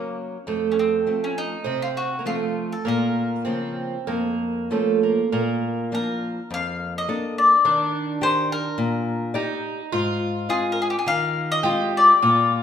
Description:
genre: fado-style ballad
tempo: 93-107 BPM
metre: 4/4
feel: rubato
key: Bb harmonic minor, Bb major from 5.3 s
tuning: A4 = 440 Hz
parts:
  - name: mandolin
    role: melody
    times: 0.0-12.5 s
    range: Bb3 to F5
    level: -21 LUFS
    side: left 3 dB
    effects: none
  - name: fingerpicked twelve-string acoustic guitar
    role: second line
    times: 0.0-12.6 s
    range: A3 to G4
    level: -25 LUFS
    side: right 5 dB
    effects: none
  - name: nylon-string guitar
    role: accompaniment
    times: 0.0-12.6 s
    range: F2 to D5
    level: -27 LUFS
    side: left 3 dB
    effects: none
room: wet recital hall reverb, RT60 1.4 s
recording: minimal, uncompressed stereo recording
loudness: -20 LUFS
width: side -8 dB against mid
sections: 0.0-5.3 A section; 5.3-12.6 B section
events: none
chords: 0.5 F; 2.9 Bbm; 5.3 Bbmaj7; 7.7 Ebmaj7; 9.9 Ab6

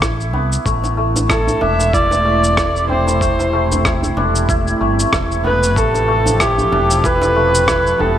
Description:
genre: organic downtempo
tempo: 94 BPM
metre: 4/4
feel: swing 56% on 16ths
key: A minor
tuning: A4 = 443 Hz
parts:
  - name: santur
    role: arpeggios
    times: 0.0-8.2 s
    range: A3 to E4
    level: -20 LUFS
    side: equal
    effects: digital delay
  - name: mellow fretless electric bass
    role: bass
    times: 0.0-8.2 s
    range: E1 to C2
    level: -20 LUFS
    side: equal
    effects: tube saturation, ensemble chorus, sidechain pumping
  - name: electronic kick drum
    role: drums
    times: 0.0-7.8 s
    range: none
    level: -21 LUFS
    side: equal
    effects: overdrive
  - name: electronic rim click and shaker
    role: drums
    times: 0.0-8.0 s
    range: none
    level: -22 LUFS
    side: equal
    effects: overdrive
  - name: djembe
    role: percussion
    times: 0.3-8.1 s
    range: none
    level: -27 LUFS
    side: right 1 dB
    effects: none
  - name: warm analog pad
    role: sustained chords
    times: 0.7-8.2 s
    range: C3 to A4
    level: -23 LUFS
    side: equal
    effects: chorus, sidechain pumping
  - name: dark kamancheh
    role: melody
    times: 1.3-8.2 s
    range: G4 to E5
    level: -16 LUFS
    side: equal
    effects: digital delay
room: moderate concert hall reverb, RT60 2.3 s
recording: none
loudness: -13 LUFS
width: side -10 dB against mid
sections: 0.0-8.2 A section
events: none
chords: 0.0 Cmaj13; 0.7 Am; 5.8 Fmaj7

